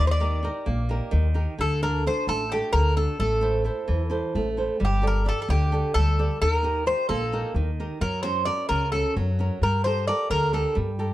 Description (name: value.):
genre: greek folk, Greek bouzouki band.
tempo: 261 BPM (eighths).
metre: 7/8.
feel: straight.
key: D phrygian dominant.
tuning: A4 = 440 Hz.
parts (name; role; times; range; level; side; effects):
Greek bouzouki; melody; 0.0-10.8 s; G4 to D5; -26 LUFS; equal; none.
flamenco guitar; accompaniment; 0.0-11.1 s; C#3 to D5; -29 LUFS; right 2 dB; none.
upright bass; bass; 0.0-11.1 s; G1 to G2; -24 LUFS; left 1 dB; none.
room: light reverb.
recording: dark, warm production.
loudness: -22 LUFS.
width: side -15 dB against mid.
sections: 0.0-1.6 A section; 1.6-11.1 B section.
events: none.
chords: 0.0 Eb; 1.6 D; 3.2 Am; 4.8 Gsus2; 6.4 Eb; 8.0 F#; 9.6 Gmadd9.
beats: 0.21 0.44 0.67 0.90 1.13 1.36 | 1.59 1.81 2.04 2.27 2.50 2.73 2.96 | 3.19 3.42 3.65 3.88 4.11 4.34 4.57 | 4.80 5.03 5.26 5.49 5.72 5.95 6.18 | 6.41 6.64 6.87 7.09 7.33 7.55 7.78 | 8.01 8.24 8.47 8.70 8.93 9.16 9.39 | 9.62 9.85 10.08 10.31 10.54 10.77 11.00.